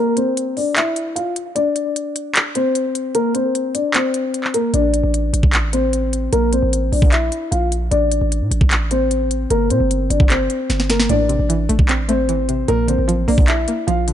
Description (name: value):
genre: hip hop, trap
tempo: 151 BPM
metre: 4/4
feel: half-time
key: unclear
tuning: A4 = 439 Hz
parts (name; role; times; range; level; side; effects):
- dark concert grand piano; melody; 0.0-14.0 s; Bb3 to F5; -19 LUFS; left 2 dB; low-pass filter, digital delay
- trap drum kit; drums; 0.2-14.1 s; handclaps, hi-hat, kick drum, snare drum; -18 LUFS; equal; none
- hard-hitting 808-style bass; bass; 4.7-14.1 s; G1 to Bb2; -20 LUFS; right 1 dB; none
- string-like resonator pluck; accompaniment; 11.1-14.1 s; A2 to D4; -22 LUFS; right 3 dB; chorus, low-pass filter
room: little or no reverb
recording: nothing above 10.9 kHz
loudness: -15 LUFS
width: side -10 dB against mid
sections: 0.0-14.1 A section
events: break 0.0-4.7; filter sweep 0.0-11.1; drum fill 10.7-11.1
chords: 0.0 Bb (rootless); 1.6 Csus2; 3.1 Bbadd9; 4.7 Am; 6.3 Bb5; 7.9 Am; 9.5 Gm; 11.1 Am; 12.7 Bb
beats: 0.37 0.76 1.16 | 1.56 1.96 2.35 2.75 | 3.15 3.54 3.94 4.34 | 4.74 5.13 5.53 5.93 | 6.33 6.72 7.12 7.52 | 7.92 8.31 8.71 9.11 | 9.51 9.90 10.30 10.70 | 11.10 11.49 11.89 12.29 | 12.68 13.08 13.48 13.88